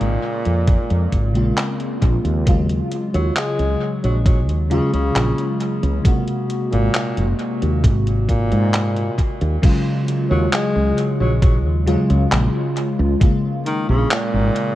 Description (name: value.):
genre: vaporwave.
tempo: 67 BPM.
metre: 4/4.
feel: straight.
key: Eb dorian.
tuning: A4 = 438 Hz.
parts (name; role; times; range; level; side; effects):
warm tenor saxophone; melody; 0.0-14.8 s; Bb2 to Ab3; -25 LUFS; equal; tape echo.
FM electric piano with soft pad layer; accompaniment; 0.0-14.8 s; C3 to Gb4; -22 LUFS; left 1 dB; analog chorus, cassette tape, analog delay.
warbly tape-like pad; sustained chords; 0.0-14.8 s; C3 to Gb4; -29 LUFS; left 1 dB; none.
woody fretless electric bass; bass; 0.0-14.5 s; Gb1 to Ab2; -18 LUFS; equal; wide subtle chorus.
detuned 8-bit digital drum machine; drums; 0.0-14.7 s; crash cymbal, handclaps, hi-hat; -25 LUFS; equal; studio reverb, analog delay.
electronic kick drum; drums; 0.7-13.4 s; none; -16 LUFS; equal; studio reverb.
room: light reverb.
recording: echo-heavy mix, cassette tape.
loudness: -16 LUFS.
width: side -14 dB against mid.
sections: 0.0-9.6 A section; 9.6-14.8 B section.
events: none.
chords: 0.0 Bbm7; 2.5 Ebm11; 6.1 Ab9; 9.6 Ebm11; 13.2 Bbm7.